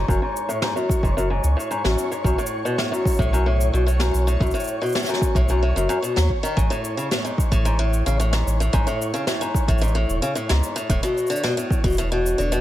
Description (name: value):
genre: folktronica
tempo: 111 BPM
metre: 4/4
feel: straight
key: A major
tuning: A4 = 440 Hz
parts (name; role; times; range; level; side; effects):
- picked swing-style acoustic guitar; arpeggios; 0.0-12.6 s; F#2 to F#3; -23 LUFS; left 2 dB; low-pass filter, tape echo
- warm sub bass; bass; 0.0-12.6 s; E1 to D#2; -21 LUFS; equal; tube saturation
- flickering grainy texture; texture; 0.0-12.6 s; C#5 to C#6; -31 LUFS; equal; built-in reverb
- cabasa and snare drum; drums; 0.1-12.6 s; none; -29 LUFS; left 1 dB; none
- electronic kick drum; drums; 0.1-11.9 s; none; -22 LUFS; equal; overdrive
room: light reverb, small room ambience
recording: none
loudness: -19 LUFS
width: side -13 dB against mid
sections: 0.0-12.6 A section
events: filter sweep on steel-string acoustic guitar 0.0-12.6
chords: 0.0 F#madd9; 2.2 B7(no3); 6.6 Amaj7; 10.9 E7sus4